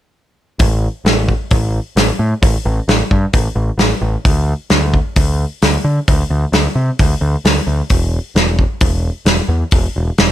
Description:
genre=rock, shoegaze and dream pop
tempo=131 BPM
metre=4/4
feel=straight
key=unclear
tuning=A4 = 438 Hz
part: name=growling picked electric bass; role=bass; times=0.6-10.3 s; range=E1 to D3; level=-16 LUFS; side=equal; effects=overdrive
part: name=loose indie drum kit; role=drums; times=0.6-10.3 s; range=hi-hat, kick drum, snare drum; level=-14 LUFS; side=equal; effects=none
room=light reverb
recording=none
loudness=-12 LUFS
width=side -12 dB against mid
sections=0.6-10.3 A section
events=none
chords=none

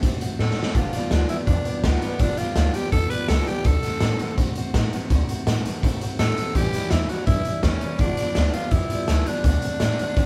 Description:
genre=rockabilly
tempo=166 BPM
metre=4/4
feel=straight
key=unclear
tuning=A4 = 440 Hz
part: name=picked steel-string acoustic guitar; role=accompaniment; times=0.0-10.3 s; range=G2 to G4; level=-33 LUFS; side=equal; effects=none
part: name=upright bass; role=bass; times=0.0-10.3 s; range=G1 to C3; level=-26 LUFS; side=equal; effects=none
part: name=raw garage drum kit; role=drums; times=0.0-10.3 s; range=hi-hat, kick drum, snare drum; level=-26 LUFS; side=equal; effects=none
part: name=growling tenor saxophone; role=melody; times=0.4-10.3 s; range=B3 to B4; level=-30 LUFS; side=equal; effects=none
room=light reverb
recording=band playing live in one room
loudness=-23 LUFS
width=mono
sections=0.0-10.3 A section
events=drum fill 0.4-0.8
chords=0.0 D7; 0.8 G7; 3.7 D7; 6.6 A7; 8.0 G7; 9.4 D7

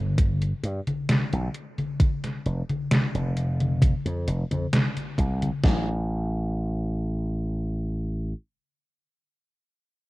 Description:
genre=vaporwave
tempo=66 BPM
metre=4/4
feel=straight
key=unclear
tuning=A4 = 439 Hz
part: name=slap bass with an envelope filter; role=bass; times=0.0-8.3 s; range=F1 to G2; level=-26 LUFS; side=equal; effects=tube saturation
part: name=detuned 8-bit digital drum machine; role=drums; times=0.2-5.6 s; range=congas, hi-hat, snare drum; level=-26 LUFS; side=equal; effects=overdrive
part: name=gated 80s digital drum machine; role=drums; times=0.2-5.9 s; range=kick drum, snare drum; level=-21 LUFS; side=equal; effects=gated reverb, gated reverb snare, overdrive
room=little or no reverb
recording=rough home demo mix, cassette tape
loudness=-24 LUFS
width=side -19 dB against mid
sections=0.0-5.6 A section; 5.6-9.3 B section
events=none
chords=none

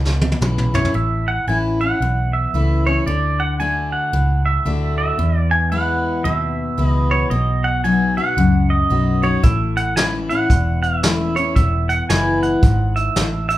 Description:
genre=honky-tonk and classic country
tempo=113 BPM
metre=4/4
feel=swing 62% on 8ths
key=E major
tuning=A4 = 440 Hz
part: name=picked steel-string acoustic guitar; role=accompaniment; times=0.0-13.6 s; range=E2 to F#4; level=-21 LUFS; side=left 3 dB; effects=none
part: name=vintage muted fingered electric bass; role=bass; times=0.0-13.6 s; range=E1 to E2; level=-20 LUFS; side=equal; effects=none
part: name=vintage brush drum kit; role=drums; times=0.1-0.9, 9.4-13.6 s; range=hi-hat, kick drum, snare drum, toms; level=-18 LUFS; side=equal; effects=none
part: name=pedal steel guitar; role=second line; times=0.7-13.6 s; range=C#5 to G#5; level=-21 LUFS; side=right 3 dB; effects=none
room=moderate large studio reverb, RT60 0.8 s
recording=band playing live in one room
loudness=-15 LUFS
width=side -14 dB against mid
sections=0.9-13.6 A section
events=drum fill 0.0-0.9; pedal steel guitar solo 0.9-13.6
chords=0.0 E6; 0.9 A; 3.1 D; 5.2 E; 7.3 B; 9.4 A; 11.6 E

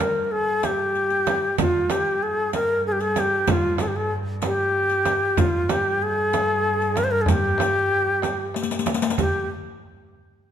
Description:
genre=Persian modal ensemble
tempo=63 BPM (dotted quarters)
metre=6/8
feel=straight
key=unclear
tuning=A4 = 440 Hz
part: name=bright reedy ney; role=melody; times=0.0-9.5 s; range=F4 to C5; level=-21 LUFS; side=left 1 dB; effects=none
part: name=warm chamber cello section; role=drone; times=0.0-9.2 s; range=G2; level=-31 LUFS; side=right 1 dB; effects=none
part: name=frame drum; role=percussion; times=0.0-9.5 s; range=none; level=-28 LUFS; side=right 6 dB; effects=none
part: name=riq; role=percussion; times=0.0-9.5 s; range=none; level=-30 LUFS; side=left 8 dB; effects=none
part: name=tombak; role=percussion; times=0.0-9.5 s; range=none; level=-29 LUFS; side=left 2 dB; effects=none
room=moderate recital hall reverb, RT60 1.7 s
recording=none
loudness=-20 LUFS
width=side -9 dB against mid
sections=0.0-9.2 A section; 9.2-10.5 B section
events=drum fill 8.5-9.2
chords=none

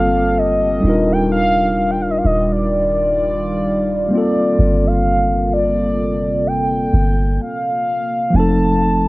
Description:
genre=R&B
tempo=64 BPM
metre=4/4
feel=swing 58% on 16ths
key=G minor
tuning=A4 = 443 Hz
part: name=mellow horn-like synth lead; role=melody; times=0.0-9.1 s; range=D5 to A5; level=-18 LUFS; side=equal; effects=chorus, phaser, cassette tape
part: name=mellow tine electric piano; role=accompaniment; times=0.0-9.1 s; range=F3 to Bb4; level=-18 LUFS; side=equal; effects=medium stereo tremolo, cassette tape
part: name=deep dark ambient pad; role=sustained chords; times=0.0-9.1 s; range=C3 to D5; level=-25 LUFS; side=equal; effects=chorus, built-in reverb, cassette tape
part: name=soft 808-style bass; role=bass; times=0.0-9.1 s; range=Eb1 to G1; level=-20 LUFS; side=equal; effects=none
room=light reverb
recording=home recording on cassette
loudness=-14 LUFS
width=side -20 dB against mid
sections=0.0-8.3 A section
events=stop 7.4-8.3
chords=0.0 Gm11; 0.8 Ebmaj9; 4.1 Gm11; 8.3 F7

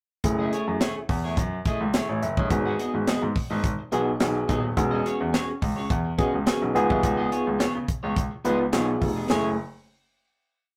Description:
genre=early-eighties boogie funk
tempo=106 BPM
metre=4/4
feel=straight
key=F# dorian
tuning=A4 = 439 Hz
part: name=tine electric piano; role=accompaniment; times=0.2-9.6 s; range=A3 to E5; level=-28 LUFS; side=equal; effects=none
part: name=clean electric guitar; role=riff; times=0.2-9.5 s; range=A3 to F#5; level=-34 LUFS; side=equal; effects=none
part: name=clear baby grand piano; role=bass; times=0.2-9.6 s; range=D#1 to C#3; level=-31 LUFS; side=equal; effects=none
part: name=tight funk drum kit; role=drums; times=0.2-9.4 s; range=handclaps, hi-hat, kick drum, snare drum, splash cymbal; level=-29 LUFS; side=equal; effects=none
room=light reverb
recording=rough rehearsal-room recording, tube saturation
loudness=-25 LUFS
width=mono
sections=0.2-9.3 verse; 9.3-10.8 final chord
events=none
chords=0.2 F#m9; 2.5 G#m7; 4.8 E69; 6.8 C#7; 9.3 F#m9

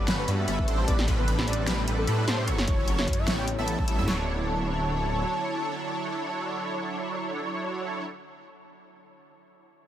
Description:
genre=future bass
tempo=150 BPM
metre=4/4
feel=swing 55% on 16ths, half-time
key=D major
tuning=A4 = 439 Hz
part: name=warm velvety synth lead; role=melody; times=0.0-8.0 s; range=A4 to A5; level=-35 LUFS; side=equal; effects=chorus, sidechain pumping, dub echo
part: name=airy breathy pad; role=sustained chords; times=0.0-8.0 s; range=C3 to F#5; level=-40 LUFS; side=equal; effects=none
part: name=Celtic harp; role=arpeggios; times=0.0-7.0 s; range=B3 to C#5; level=-39 LUFS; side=left 8 dB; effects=sidechain pumping, digital delay
part: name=wide unison pluck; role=arpeggios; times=0.0-8.7 s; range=B5 to E6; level=-43 LUFS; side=right 1 dB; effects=none
part: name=big bright polysynth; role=riff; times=0.0-8.0 s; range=F#3 to E5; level=-31 LUFS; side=right 2 dB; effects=ensemble chorus, sidechain pumping
part: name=wide detuned saw bass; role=bass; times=0.0-5.2 s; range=D1 to A2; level=-28 LUFS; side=equal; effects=chorus, sidechain pumping
part: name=dubstep drum kit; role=drums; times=0.1-4.0 s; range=hi-hat, snare drum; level=-30 LUFS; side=equal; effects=overdrive
part: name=big-room dance drum kit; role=drums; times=0.6-4.2 s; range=kick drum, snare drum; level=-27 LUFS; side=equal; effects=none
room=digital ambience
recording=none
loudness=-25 LUFS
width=side -11 dB against mid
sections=0.0-4.1 A section; 4.1-7.3 B section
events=drop 0.0-4.1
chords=0.0 Gmaj9#11; 0.7 Am11; 2.5 F#m7; 3.3 A9; 4.1 Dmaj9

